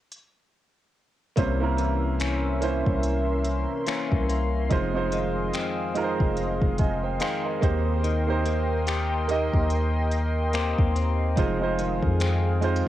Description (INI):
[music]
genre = contemporary R&B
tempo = 72 BPM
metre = 4/4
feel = swing 58% on 16ths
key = F minor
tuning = A4 = 443 Hz
[part]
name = smooth R&B drum kit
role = drums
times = 0.1-12.9 s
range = finger snaps, hi-hat, kick drum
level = -27 LUFS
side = equal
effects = none
[part]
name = clear grand piano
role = accompaniment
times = 1.4-12.9 s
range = Ab3 to Ab5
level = -29 LUFS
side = right 6 dB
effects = cassette tape
[part]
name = chorused pulse-width pad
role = sustained chords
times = 1.7-12.9 s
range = Db4 to C6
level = -31 LUFS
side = equal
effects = cassette tape
[part]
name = direct-recorded clean electric guitar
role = arpeggios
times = 1.4-12.9 s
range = F2 to G4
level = -31 LUFS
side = left 8 dB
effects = cassette tape, tape echo
[part]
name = long sustained 808-style bass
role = bass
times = 1.4-12.8 s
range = F1 to F2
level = -26 LUFS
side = equal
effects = none
[sound]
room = light reverb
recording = home recording on cassette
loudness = -22 LUFS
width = side -13 dB against mid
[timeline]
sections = 0.0-12.9 A section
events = break 0.0-1.4; silent gap 0.5-1.4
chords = 0.0 N.C.; 1.4 C7b9; 4.7 Fm7; 7.6 Cm7/Eb; 11.4 Fm7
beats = 0.54 | 1.37 2.21 3.04 3.87 | 4.71 5.54 6.37 7.21 | 8.04 8.87 9.71 10.54 | 11.37 12.21